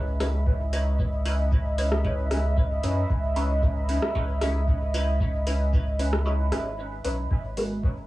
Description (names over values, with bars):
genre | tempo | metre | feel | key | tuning
dub techno | 114 BPM | 4/4 | straight | unclear | A4 = 439 Hz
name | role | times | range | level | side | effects
deep dark ambient pad | sustained chords | 0.1-8.1 s | A#4 to B5 | -32 LUFS | right 1 dB | chorus, built-in reverb, sidechain pumping, cassette tape
filtered dub chord stab | stabs | 0.0-7.9 s | G#3 to B4 | -32 LUFS | equal | phaser, vintage 12-bit sampler grit, sidechain pumping, cassette tape, dub echo
soft dub sub bass | bass | 0.0-8.1 s | G#1 to F#2 | -26 LUFS | equal | sidechain pumping
deep house drum kit | drums | 0.2-7.7 s | hi-hat, rim click | -32 LUFS | equal | overdrive, cassette tape
electronic kick drum | drums | 0.5-7.9 s | none | -26 LUFS | equal | cassette tape
room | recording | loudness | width
light reverb | home recording on cassette, small room ambience | -23 LUFS | side -17 dB against mid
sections
0.0-8.1 A section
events
break 6.3-7.3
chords
0.0 C#m9; 7.3 G#m9